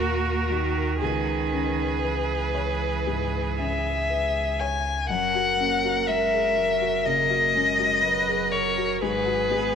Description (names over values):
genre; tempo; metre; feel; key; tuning
neoclassical piano and strings; 60 BPM; 4/4; rubato; unclear; A4 = 440 Hz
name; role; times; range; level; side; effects
rich violin; melody; 0.0-9.8 s; A#4 to G#5; -24 LUFS; left 4 dB; tape echo
rich cello; second line; 0.0-9.8 s; D#3 to B3; -32 LUFS; right 9 dB; none
felt-muted upright piano; accompaniment; 0.0-9.8 s; C#2 to C#5; -31 LUFS; left 10 dB; none
rich viola; accompaniment; 0.0-9.8 s; F#4 to B4; -29 LUFS; right 10 dB; none
punchy sub bass; bass; 0.0-9.8 s; F#1 to D#2; -32 LUFS; equal; none
room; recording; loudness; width
moderate echo chamber reverb, RT60 1.9 s, small room reverb; 1960s-style stereo with parts hard left and right; -22 LUFS; side -7 dB against mid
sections
0.0-5.1 A section; 5.1-9.8 B section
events
none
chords
0.0 D#m; 1.0 C#m7; 5.1 F#; 9.0 G#m7